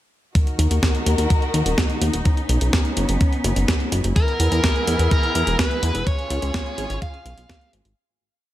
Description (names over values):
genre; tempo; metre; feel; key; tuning
italo disco; 126 BPM; 4/4; straight; Eb minor; A4 = 439 Hz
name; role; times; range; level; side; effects
warm studio string section; sustained chords; 0.4-8.0 s; Eb3 to Bb4; -27 LUFS; equal; none
clean 12-bit digital drum machine; drums; 0.4-7.9 s; hi-hat, snare drum; -25 LUFS; right 1 dB; studio reverb, gated reverb
electronic kick drum; drums; 0.4-7.6 s; none; -20 LUFS; equal; studio reverb
chorused synth bass; bass; 0.6-7.9 s; Eb1 to E2; -21 LUFS; equal; none
bluesy overdriven lead guitar; melody; 4.2-7.7 s; Bb4 to F5; -25 LUFS; left 1 dB; distortion, tape echo
room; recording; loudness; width
little or no reverb; none; -18 LUFS; side -14 dB against mid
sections
0.4-8.0 verse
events
fade-out 5.4-8.0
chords
0.4 Ebm; 2.3 Badd9; 4.2 E; 6.1 Db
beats
| 0.35 0.83 1.30 1.78 | 2.26 2.73 3.21 3.69 | 4.16 4.64 5.11 5.59 | 6.07 6.54 7.02 7.49